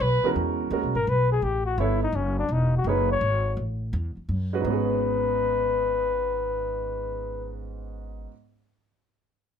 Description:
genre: jazz, small-group swing and bop.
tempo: 168 BPM.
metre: 3/4.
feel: swing 65% on 8ths.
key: G# minor.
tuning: A4 = 441 Hz.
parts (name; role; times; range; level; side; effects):
mellow flugelhorn; melody; 0.0-7.6 s; C#4 to C#5; -26 LUFS; left 4 dB; none.
upright bass; bass; 0.0-8.3 s; E1 to F#2; -28 LUFS; equal; none.
warm grand piano; accompaniment; 0.2-8.3 s; E2 to C#5; -29 LUFS; right 6 dB; none.
room: light reverb.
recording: none.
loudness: -23 LUFS.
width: side -8 dB against mid.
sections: 0.4-4.6 A section; 4.6-6.8 B section.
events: none.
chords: 0.4 Emaj7; 1.4 A7; 2.5 Emaj7; 3.6 A5; 4.6 G#m7.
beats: 0.00 | 0.36 0.72 1.07 | 1.43 1.79 2.14 | 2.50 2.86 3.21 | 3.57 3.93 4.29 | 4.65 5.00 5.36 | 5.72 6.08 6.43.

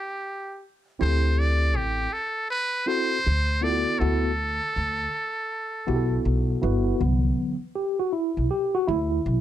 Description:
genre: hip hop, jazz-hop.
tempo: 80 BPM.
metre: 4/4.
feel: swing 64% on 16ths.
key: unclear.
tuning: A4 = 440 Hz.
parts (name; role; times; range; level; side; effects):
trumpet with metal mute; melody; 0.0-6.3 s; G4 to D5; -26 LUFS; right 1 dB; none.
mellow tine electric piano; accompaniment; 1.0-9.4 s; D3 to B4; -26 LUFS; equal; overdrive, medium stereo tremolo, plate reverb.
upright bass; bass; 1.0-9.4 s; G1 to D2; -24 LUFS; equal; none.
room: moderate studio ambience, RT60 0.5 s.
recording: dark, warm production.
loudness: -22 LUFS.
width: side -11 dB against mid.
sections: 0.0-7.0 A section; 7.0-9.4 B section.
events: tine electric piano solo 7.0-9.4.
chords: 0.0 N.C.; 1.0 D9sus4; 3.3 D7; 4.0 Gmaj13/D; 7.0 Cmaj9#11 (rootless).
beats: 0.26 | 1.01 1.76 2.51 3.26 | 4.01 4.76 5.51 6.26 | 7.01 7.76 8.51 9.26.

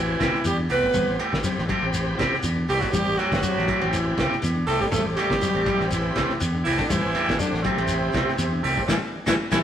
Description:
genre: afrobeat.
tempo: 121 BPM.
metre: 4/4.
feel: swing 54% on 16ths.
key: A dorian.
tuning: A4 = 445 Hz.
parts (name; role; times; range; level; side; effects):
growling tenor saxophone; melody; 0.0-9.6 s; C4 to B4; -26 LUFS; right 2 dB; none.
breathy baritone saxophone; second line; 0.0-9.6 s; C3 to B3; -35 LUFS; left 3 dB; none.
trombone with bucket mute; second line; 0.0-9.6 s; C3 to B3; -32 LUFS; right 2 dB; none.
bright tonewheel organ; accompaniment; 0.0-9.6 s; C4 to D5; -33 LUFS; equal; slow rotary speaker, chorus vibrato.
fingered electric bass; bass; 0.0-9.6 s; G1 to E2; -28 LUFS; equal; none.
semi-hollow electric guitar; arpeggios; 0.2-9.6 s; C3 to A3; -32 LUFS; left 4 dB; none.
electric guitar at the edge of break-up; stabs; 0.2-9.6 s; E3 to G4; -28 LUFS; right 2 dB; none.
cloth-damped thuddy drum kit; drums; 0.2-9.6 s; hi-hat, kick drum, ride cymbal, snare drum; -28 LUFS; equal; none.
shekere; percussion; 0.2-9.6 s; none; -34 LUFS; left 1 dB; none.
room: wet stone room reverb, RT60 1.3 s.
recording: rough rehearsal-room recording.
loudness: -20 LUFS.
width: side -9 dB against mid.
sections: 0.0-9.6 A section.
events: band accent 8.9-9.6.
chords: 0.0 Am7.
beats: 0.45 | 0.95 1.44 1.94 2.44 | 2.93 3.43 3.92 4.42 | 4.92 5.41 5.91 6.40 | 6.90 7.40 7.89 8.39 | 8.89 9.38.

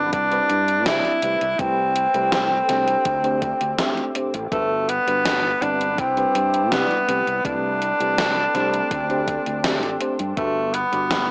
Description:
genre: vaporwave.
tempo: 82 BPM.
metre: 4/4.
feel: straight.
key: G major.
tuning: A4 = 441 Hz.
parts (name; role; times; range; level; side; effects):
clear tenor saxophone; melody; 0.0-11.3 s; A3 to E4; -20 LUFS; equal; tape echo.
mellow FM electric piano; accompaniment; 0.0-11.3 s; C3 to E5; -27 LUFS; equal; analog chorus, tape echo.
warbly tape-like pad; sustained chords; 0.0-11.3 s; G3 to D6; -33 LUFS; equal; none.
fretless electric bass; bass; 0.0-11.3 s; G1 to C3; -30 LUFS; equal; none.
electronic kick drum; drums; 0.1-10.5 s; none; -30 LUFS; equal; overdrive.
gated 80s digital drum machine; drums; 0.1-11.3 s; hi-hat, snare drum; -24 LUFS; equal; gated reverb, gated reverb snare, overdrive.
room: little or no reverb.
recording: dry, gritty hardware recording, small speaker sound.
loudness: -18 LUFS.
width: side -27 dB against mid.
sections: 0.0-11.3 A section.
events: none.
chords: 0.1 Cmaj9; 1.2 Am9/C; 3.1 D7sus4; 4.5 Gmaj7; 6.0 Cmaj9; 7.1 Am9/C; 8.9 D7sus4; 10.4 Gmaj7.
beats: 0.13 0.86 | 1.59 2.33 3.06 3.79 | 4.52 5.25 5.99 6.72 | 7.45 8.18 8.91 9.64 | 10.38 11.11.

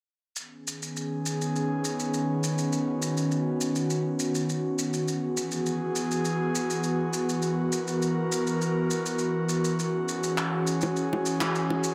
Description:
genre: sunset chillout.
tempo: 102 BPM.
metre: 4/4.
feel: straight.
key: B major.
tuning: A4 = 440 Hz.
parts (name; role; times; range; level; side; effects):
airy breathy pad; sustained chords; 0.4-11.9 s; D#3 to A#4; -29 LUFS; equal; chorus.
shaker and handclaps; drums; 0.4-11.9 s; none; -36 LUFS; equal; none.
bongos; percussion; 10.8-11.8 s; none; -36 LUFS; equal; none.
room: moderate plate reverb, RT60 3.1 s.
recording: none.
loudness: -28 LUFS.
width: mono.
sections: 0.4-11.9 A section.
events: filter sweep on analog synth pad 0.4-11.9.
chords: 0.4 B69; 5.1 F#9sus4; 9.8 E69.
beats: | 0.38 0.96 1.55 2.14 | 2.73 3.32 3.90 4.49 | 5.08 5.67 6.26 6.85 | 7.43 8.02 8.61 9.20 | 9.79 10.38 10.96 11.55.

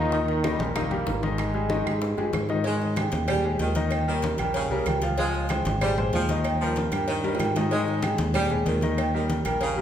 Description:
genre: latin, salsa.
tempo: 190 BPM.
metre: 4/4.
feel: straight.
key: unclear.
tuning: A4 = 440 Hz.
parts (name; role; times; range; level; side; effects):
bright trombone section; melody; 0.0-2.3 s; G2 to Eb4; -30 LUFS; right 2 dB; none.
clear grand piano; accompaniment; 0.0-9.8 s; Eb3 to F5; -28 LUFS; left 3 dB; none.
modern bright fingered electric bass; bass; 0.0-9.8 s; Ab1 to Ab2; -28 LUFS; equal; none.
bongos and cowbell; percussion; 0.1-9.8 s; none; -36 LUFS; left 3 dB; none.
congas; percussion; 0.1-9.8 s; none; -33 LUFS; left 1 dB; none.
timbales and agogo bells; percussion; 0.3-9.6 s; none; -32 LUFS; right 4 dB; none.
claves; percussion; 0.4-9.6 s; none; -40 LUFS; right 6 dB; none.
mellow saxophone section; second line; 2.6-9.8 s; Db3 to Ab3; -30 LUFS; right 2 dB; none.
room: wet recital hall reverb, RT60 1.4 s.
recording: recorded in a church or concert hall.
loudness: -23 LUFS.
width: side -10 dB against mid.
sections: 0.0-2.7 A section; 2.7-9.8 B section.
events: drum fill 2.0-2.7, 7.2-7.7.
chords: 0.1 Eb; 1.4 Ab5; 3.9 Eb7; 5.2 Dbmaj7; 6.4 Eb; 7.7 Ab5; 9.0 Eb7.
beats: | 0.12 0.44 0.76 1.07 | 1.39 1.71 2.02 2.34 | 2.65 2.97 3.29 3.60 | 3.92 4.24 4.55 4.87 | 5.18 5.50 5.82 6.13 | 6.45 6.76 7.08 7.40 | 7.71 8.03 8.35 8.66 | 8.98 9.30 9.61.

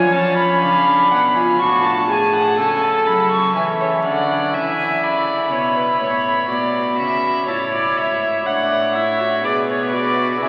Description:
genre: classical, baroque-style fugue for string quartet.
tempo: 61 BPM.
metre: 4/4.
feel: straight.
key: unclear.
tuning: A4 = 440 Hz.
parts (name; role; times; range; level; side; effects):
dark violin; melody; 0.0-10.5 s; C#5 to C#6; -21 LUFS; equal; none.
dark violin; second line; 0.0-10.5 s; G#4 to A5; -24 LUFS; equal; none.
warm viola; accompaniment; 0.0-10.5 s; C#4 to A4; -24 LUFS; equal; none.
dark cello; bass; 0.0-10.5 s; G#2 to F#3; -29 LUFS; equal; none.
room: wet cathedral reverb, RT60 5.1 s.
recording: very old 78 rpm record, vinyl crackle, nothing above 11.0 kHz.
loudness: -18 LUFS.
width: mono.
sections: 0.0-3.6 A section; 3.6-10.5 B section.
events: none.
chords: 0.0 C#7/E#; 1.6 F#m/A; 3.6 C#m; 5.5 Bm; 7.5 A; 9.4 G#dim/B.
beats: 0.62 1.60 2.58 | 3.56 4.54 5.52 6.50 | 7.48 8.46 9.44 10.42.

